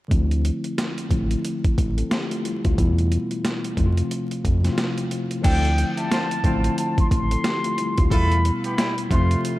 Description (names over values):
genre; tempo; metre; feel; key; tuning
hip hop, boom-bap hip-hop; 90 BPM; 4/4; swing 59% on 16ths; D minor; A4 = 443 Hz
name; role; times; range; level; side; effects
mellow tine electric piano; accompaniment; 0.1-9.6 s; B2 to A4; -25 LUFS; left 1 dB; medium stereo tremolo, cassette tape, low-pass filter
round analog bass; bass; 0.1-9.4 s; A1 to F2; -21 LUFS; equal; none
boom bap sampler-style drum kit; drums; 0.1-9.6 s; crash cymbal, hi-hat, kick drum, snare drum; -24 LUFS; equal; overdrive
trumpet with plunger mute; melody; 5.4-9.4 s; G5 to C6; -26 LUFS; equal; diffuse ambient delay
warm horn section; stabs; 5.4-9.6 s; B2 to A4; -32 LUFS; right 2 dB; diffuse ambient delay
room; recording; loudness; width
light reverb; vinyl crackle; -20 LUFS; side -17 dB against mid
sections
0.1-5.4 A section; 5.4-9.6 B section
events
filter sweep on tine electric piano 0.1-5.4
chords
0.1 Dm7; 2.8 Em; 3.8 F; 5.4 Dm7; 8.1 Em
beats
| 0.11 0.78 1.45 2.11 | 2.78 3.45 4.11 4.78 | 5.45 6.11 6.78 7.45 | 8.11 8.78 9.45